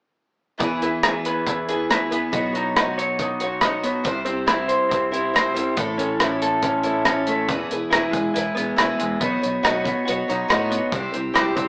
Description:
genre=folk rock and heartland rock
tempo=140 BPM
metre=4/4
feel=straight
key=E major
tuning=A4 = 440 Hz
part: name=picked twelve-string acoustic guitar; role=accompaniment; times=0.6-11.7 s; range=C3 to C#5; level=-28 LUFS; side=equal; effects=none
part: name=electric guitar through a small old amp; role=riff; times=0.6-11.7 s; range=E2 to C#5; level=-26 LUFS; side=equal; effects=spring reverb
part: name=fingered electric bass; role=bass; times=0.6-11.7 s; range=E1 to A2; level=-37 LUFS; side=equal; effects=none
part: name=cloth-damped thuddy drum kit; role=drums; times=0.6-11.7 s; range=hi-hat, kick drum, rim click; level=-24 LUFS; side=equal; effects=none
room=light reverb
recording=rough rehearsal-room recording, small speaker sound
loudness=-22 LUFS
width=mono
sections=0.6-7.5 A section; 7.5-11.7 B section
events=none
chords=0.6 E; 2.3 Badd9; 4.0 C; 5.8 A; 7.5 E; 9.2 Badd9; 10.9 C

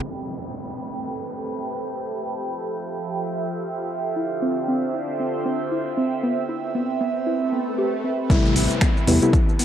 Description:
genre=deep house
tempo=116 BPM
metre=4/4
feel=swing 57% on 16ths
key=unclear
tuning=A4 = 438 Hz
part: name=warbly tape-like pad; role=sustained chords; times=0.6-8.3 s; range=D3 to E5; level=-32 LUFS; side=right 1 dB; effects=chorus, built-in reverb, phaser, sidechain pumping
part: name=deep house drum kit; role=drums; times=0.0-0.1, 8.3-9.6 s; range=crash cymbal, finger snaps, hi-hat, shaker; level=-26 LUFS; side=equal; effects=overdrive
part: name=downlifter and swell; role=sound effects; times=0.0-9.6 s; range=none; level=-33 LUFS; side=equal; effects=none
part: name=airy breathy pad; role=texture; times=0.0-9.6 s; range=C4 to B5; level=-27 LUFS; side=right 2 dB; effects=chorus, phaser, sidechain pumping
part: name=soft round pluck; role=arpeggios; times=4.2-9.6 s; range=B3 to G4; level=-26 LUFS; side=right 1 dB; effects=chorus, sidechain pumping, tape echo
part: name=deep mellow chord stab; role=stabs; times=8.3-9.4 s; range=C3 to E4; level=-21 LUFS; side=left 2 dB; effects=chorus, sidechain pumping, tape echo
part: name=round analog bass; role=bass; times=8.3-9.2 s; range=A1 to E2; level=-24 LUFS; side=equal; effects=tube saturation, sidechain pumping
part: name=electronic kick drum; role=drums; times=8.3-9.5 s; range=none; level=-19 LUFS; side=equal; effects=overdrive
room=light reverb, digital ambience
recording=dry, gritty hardware recording, cassette tape, low-pass filter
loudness=-21 LUFS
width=side -10 dB against mid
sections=0.0-8.3 A section; 8.3-9.6 B section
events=band accent 0.0; swell 7.4-8.3; drop 8.3-9.6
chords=0.0 Am9; 2.1 Fmaj9; 3.9 Dm11; 6.2 Cmaj7; 8.3 Am9

